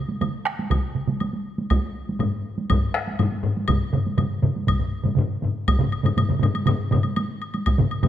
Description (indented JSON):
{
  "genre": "japanese traditional, taiko drum ensemble",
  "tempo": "121 BPM",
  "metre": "4/4",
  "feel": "straight",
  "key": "none",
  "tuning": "none",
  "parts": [
    { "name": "solo taiko drums", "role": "percussion", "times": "0.1-8.1 s", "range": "none", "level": "-28 LUFS", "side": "right 2 dB", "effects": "none" },
    { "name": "taiko ensemble", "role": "percussion", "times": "0.2-8.1 s", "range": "none", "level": "-25 LUFS", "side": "right 4 dB", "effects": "none" },
    { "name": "woodblock", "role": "percussion", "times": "0.2-8.1 s", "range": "none", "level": "-32 LUFS", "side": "left 4 dB", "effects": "none" },
    { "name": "taiko ensemble", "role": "percussion", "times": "0.7-7.8 s", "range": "none", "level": "-24 LUFS", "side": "equal", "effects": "none" },
    { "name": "taiko ensemble", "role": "percussion", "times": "2.2-8.1 s", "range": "none", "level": "-24 LUFS", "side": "left 4 dB", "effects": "none" }
  ],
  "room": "moderate scoring stage reverb, RT60 1.7 s",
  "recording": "close, detailed microphones",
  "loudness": "-21 LUFS",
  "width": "side -11 dB against mid",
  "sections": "0.0-5.7 A section; 5.7-8.1 B section",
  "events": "none",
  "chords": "none"
}